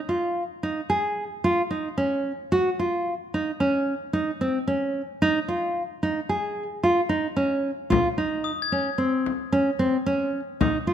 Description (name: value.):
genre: contemporary instrumental, chamber music in an uneven meter.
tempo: 111 BPM.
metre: 5/4.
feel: straight.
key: Ab mixolydian.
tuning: A4 = 440 Hz.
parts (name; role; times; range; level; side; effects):
nylon-string guitar; arpeggios; 0.1-10.9 s; C4 to Ab4; -23 LUFS; right 1 dB; none.
frame drum; percussion; 7.9-10.9 s; none; -27 LUFS; left 8 dB; none.
glockenspiel with brass mallets; texture; 8.4-10.7 s; Eb6 to Ab6; -31 LUFS; left 8 dB; none.
room: light reverb.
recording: none.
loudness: -23 LUFS.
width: side -9 dB against mid.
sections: 0.0-10.9 A section.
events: none.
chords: 0.0 Absus4; 7.9 N.C..